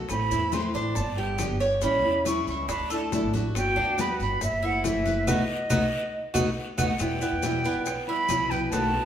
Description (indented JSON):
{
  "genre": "latin, Cuban son and guajira",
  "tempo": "139 BPM",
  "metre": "4/4",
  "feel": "straight",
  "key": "unclear",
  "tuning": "A4 = 440 Hz",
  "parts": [
    { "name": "nylon-string guitar", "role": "accompaniment", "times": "0.0-9.1 s", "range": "B2 to G4", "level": "-29 LUFS", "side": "left 1 dB", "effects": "none" },
    { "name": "Cuban tres", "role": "arpeggios", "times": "0.0-9.1 s", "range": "B3 to C#5", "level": "-31 LUFS", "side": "right 2 dB", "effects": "none" },
    { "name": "upright bass", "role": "bass", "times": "0.0-9.0 s", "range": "F#1 to E2", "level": "-32 LUFS", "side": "equal", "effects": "none" },
    { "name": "silver concert flute", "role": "melody", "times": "0.1-9.1 s", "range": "D#5 to C#6", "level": "-28 LUFS", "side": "right 2 dB", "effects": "none" },
    { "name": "bongos", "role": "percussion", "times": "0.1-9.1 s", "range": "none", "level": "-40 LUFS", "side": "left 3 dB", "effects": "none" },
    { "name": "claves", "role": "percussion", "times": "0.1-8.5 s", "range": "none", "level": "-42 LUFS", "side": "right 1 dB", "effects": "none" },
    { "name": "congas", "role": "percussion", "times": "0.1-9.1 s", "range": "none", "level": "-34 LUFS", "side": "left 2 dB", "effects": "none" },
    { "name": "guiro", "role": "percussion", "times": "0.1-9.1 s", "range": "none", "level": "-43 LUFS", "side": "left 3 dB", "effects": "none" },
    { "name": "maracas", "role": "percussion", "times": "0.1-8.9 s", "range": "none", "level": "-39 LUFS", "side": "left 5 dB", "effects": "none" }
  ],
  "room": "wet stone room reverb, RT60 1.3 s",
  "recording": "band playing live in one room",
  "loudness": "-23 LUFS",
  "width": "side -9 dB against mid",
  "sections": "0.0-7.0 A section; 7.0-9.1 B section",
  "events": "band accent 5.3-7.0; drum fill 6.4-7.0",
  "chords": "0.1 Am; 1.0 G; 1.8 A7; 2.7 Dsus2; 3.6 Gmaj7; 4.4 F#m7b5; 5.3 B7; 7.0 Em",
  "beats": "| 0.10 0.53 0.96 1.40 | 1.83 2.26 2.69 3.12 | 3.56 3.99 4.42 4.85 | 5.28 5.71 6.14 6.57 | 7.00 7.43 7.87 8.30 | 8.73"
}